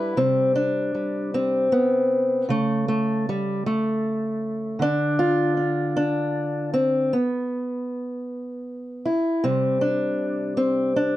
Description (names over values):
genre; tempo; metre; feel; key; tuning
folk, solo fingerstyle acoustic guitar; 52 BPM (dotted quarters); 6/8; straight; C major; A4 = 440 Hz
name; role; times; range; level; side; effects
fingerpicked acoustic archtop guitar; solo; 0.0-11.2 s; C3 to B4; -21 LUFS; equal; none
room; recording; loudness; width
moderate studio ambience, RT60 0.5 s; dark, warm production; -21 LUFS; side -14 dB against mid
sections
0.2-11.2 A section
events
none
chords
0.2 C5; 2.5 N.C.; 9.4 Csus2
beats
| 0.17 1.33 | 2.48 3.64 | 4.80 5.96 | 7.12 8.27 | 9.43 10.59